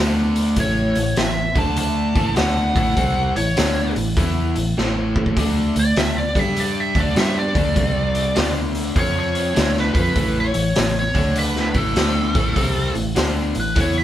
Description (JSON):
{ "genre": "blues rock power trio and southern rock", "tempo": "100 BPM", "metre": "4/4", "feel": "swing 65% on 8ths", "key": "unclear", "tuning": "A4 = 441 Hz", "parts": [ { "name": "overdriven electric guitar", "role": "riff", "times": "0.0-14.0 s", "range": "A2 to G4", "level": "-22 LUFS", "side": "equal", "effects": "none" }, { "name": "vintage muted fingered electric bass", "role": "bass", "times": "0.0-14.0 s", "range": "A1 to G2", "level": "-24 LUFS", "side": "equal", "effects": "none" }, { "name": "raw garage drum kit", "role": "drums", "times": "0.4-13.9 s", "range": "hi-hat, kick drum, snare drum", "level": "-22 LUFS", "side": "equal", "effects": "none" }, { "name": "nasal lead guitar with a parked wah", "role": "melody", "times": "0.6-14.0 s", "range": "A4 to A5", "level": "-23 LUFS", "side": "equal", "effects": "overdrive" } ], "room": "moderate studio reverb, RT60 0.8 s", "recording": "band playing live in one room", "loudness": "-17 LUFS", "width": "side -12 dB against mid", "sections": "0.0-14.0 A section", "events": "drum fill 4.8-5.4", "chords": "0.0 D5; 0.6 A; 1.5 D5; 2.1 A5; 5.4 D5; 6.3 G5; 6.9 D5; 7.8 C5; 8.4 D5; 9.0 F5; 9.6 D5; 10.2 A; 11.1 D5; 11.7 A7(no3)" }